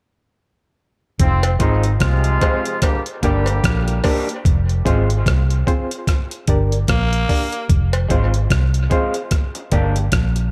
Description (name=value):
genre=dub reggae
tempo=74 BPM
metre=4/4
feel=swing 58% on 16ths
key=F dorian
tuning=A4 = 439 Hz
part: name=clear horn section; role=second line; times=1.2-4.0 s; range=Ab2 to G4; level=-26 LUFS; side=equal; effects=dub echo
part: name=vintage muted fingered electric bass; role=bass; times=1.2-10.5 s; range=F1 to C2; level=-20 LUFS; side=equal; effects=none
part: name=breakbeat sampler-style drum kit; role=drums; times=1.2-10.5 s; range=hi-hat, kick drum, rim click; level=-22 LUFS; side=equal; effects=none
part: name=cowbell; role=percussion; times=1.4-8.1 s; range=none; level=-31 LUFS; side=equal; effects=dub echo
part: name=electric guitar through a small old amp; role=accompaniment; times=1.6-9.9 s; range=Ab3 to G4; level=-29 LUFS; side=equal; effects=lush chorus, dub echo
part: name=reed electric piano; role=stabs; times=1.6-10.0 s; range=C4 to D5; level=-29 LUFS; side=equal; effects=fast tremolo, dub echo
part: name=raspy tenor saxophone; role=melody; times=6.9-7.7 s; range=Bb3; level=-27 LUFS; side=equal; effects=dub echo
room=light reverb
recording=none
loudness=-18 LUFS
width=mono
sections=1.2-7.7 A section; 7.7-10.5 B section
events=part muted 4.4-7.7, 7.7-10.5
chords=1.2 Fm; 2.8 Gm; 4.4 Fm; 6.1 Gm; 7.7 Fm; 9.3 Gm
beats=| 1.20 2.01 2.82 3.63 | 4.44 5.25 6.07 6.88 | 7.69 8.50 9.31 10.12